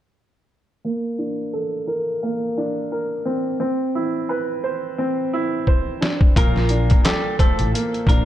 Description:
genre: hip hop, boom-bap hip-hop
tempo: 87 BPM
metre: 4/4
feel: swing 55% on 16ths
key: Bb major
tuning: A4 = 440 Hz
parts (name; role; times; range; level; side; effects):
- dark upright piano; accompaniment; 0.8-8.2 s; Bb2 to C5; -22 LUFS; right 1 dB; high-pass filter, low-pass filter
- trip hop sampler-style drum kit; drums; 5.7-8.2 s; handclaps, hi-hat, kick drum, snare drum; -17 LUFS; equal; none
- clean electric guitar; melody; 6.4-8.2 s; G3 to Bb4; -25 LUFS; equal; high-pass filter, low-pass filter, digital delay
- upright bass; bass; 6.4-8.2 s; A1 to Bb1; -21 LUFS; left 1 dB; none
room: little or no reverb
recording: dark, warm production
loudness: -19 LUFS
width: side -12 dB against mid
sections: 0.8-6.4 A section; 6.4-8.2 B section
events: filter sweep on upright piano 0.8-6.4; drum fill 5.7-6.4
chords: 0.8 Bbmaj9; 3.6 Cmaj9; 6.4 Bbmaj9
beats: | 0.84 1.53 2.22 2.91 | 3.60 4.29 4.98 5.67 | 6.36 7.05 7.74

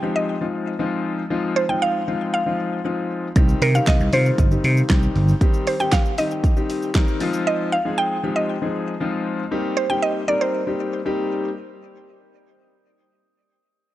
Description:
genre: dance-pop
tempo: 117 BPM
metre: 4/4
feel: straight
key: C minor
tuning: A4 = 440 Hz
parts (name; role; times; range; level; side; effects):
- mallet-like synth pluck; melody; 0.0-11.3 s; Bb4 to G5; -23 LUFS; right 2 dB; chorus, ping-pong delay
- warm concert grand piano; accompaniment; 0.0-11.5 s; Eb3 to Bb4; -24 LUFS; left 2 dB; sidechain pumping
- vintage slap bass; bass; 3.4-5.3 s; G1 to C3; -18 LUFS; equal; sidechain pumping
- pop drum kit; drums; 3.4-7.5 s; handclaps, hi-hat, kick drum, shaker, snare drum; -19 LUFS; equal; none
room: light reverb, digital ambience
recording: worn, warbling old tape, cassette tape, warbly pitch drift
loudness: -18 LUFS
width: side -14 dB against mid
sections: 0.0-11.6 A section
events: none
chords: 0.0 Ab6; 3.4 Cm; 7.2 Ab6; 9.5 Cm7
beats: 0.28 0.80 | 1.31 1.82 2.33 2.85 | 3.36 3.87 4.39 4.90 | 5.41 5.92 6.44 6.95 | 7.46 7.98 8.49 9.00 | 9.52 10.03 10.54 11.05

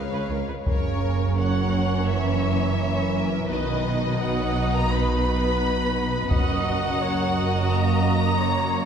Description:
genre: cinematic, epic orchestral film score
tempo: 85 BPM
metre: 4/4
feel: straight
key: unclear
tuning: A4 = 440 Hz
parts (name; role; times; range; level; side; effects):
- warm symphonic violin section; melody; 0.0-8.9 s; C#5 to B5; -29 LUFS; left 3 dB; none
- rich chamber violin section; second line; 0.0-8.9 s; C#4 to Db5; -31 LUFS; left 1 dB; none
- warm French horn section; sustained chords; 0.0-8.9 s; Ab3 to D#4; -36 LUFS; left 1 dB; none
- dark studio viola section; accompaniment; 0.1-8.9 s; Bb4 to D#5; -30 LUFS; right 1 dB; none
- warm symphonic cello section; bass; 0.1-8.9 s; Db2 to B2; -27 LUFS; right 1 dB; none
- rich studio double bass section; bass; 0.3-8.9 s; F#1 to Db2; -26 LUFS; right 2 dB; none
- warm trombone section; sustained chords; 0.7-8.9 s; C#3 to B3; -30 LUFS; right 1 dB; none
- solo taiko drums; drums; 0.7-7.7 s; none; -27 LUFS; left 1 dB; none
room: wet church reverb, RT60 2.8 s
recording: recorded in a church or concert hall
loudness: -21 LUFS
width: side -7 dB against mid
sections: 0.7-8.9 A section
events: none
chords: 0.0 Db7; 0.7 F#; 3.5 B; 6.3 F#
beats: | 0.67 1.39 2.10 2.80 | 3.50 4.21 4.91 5.61 | 6.31 7.01 7.71 8.41

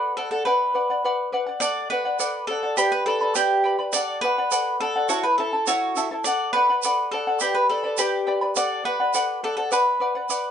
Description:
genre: andean folk, Andean ensemble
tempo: 104 BPM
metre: 2/4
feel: straight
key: unclear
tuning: A4 = 440 Hz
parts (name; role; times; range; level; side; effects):
- mandolin; melody; 0.0-10.5 s; F#4 to D5; -22 LUFS; right 1 dB; none
- charango; accompaniment; 0.0-10.5 s; E4 to B5; -25 LUFS; left 2 dB; none
- tube shaker; percussion; 1.6-10.4 s; none; -28 LUFS; right 8 dB; none
room: light reverb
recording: nothing above 10.3 kHz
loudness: -20 LUFS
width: side -8 dB against mid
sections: 0.0-1.6 A section; 1.6-10.5 A section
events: none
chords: 0.4 Bm; 1.6 D; 2.8 G; 3.9 D; 5.1 A; 6.2 D; 7.4 G; 8.6 D; 9.7 Bm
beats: | 0.45 1.03 | 1.61 2.19 | 2.77 3.35 | 3.93 4.51 | 5.09 5.67 | 6.25 6.83 | 7.41 7.98 | 8.56 9.14 | 9.72 10.30

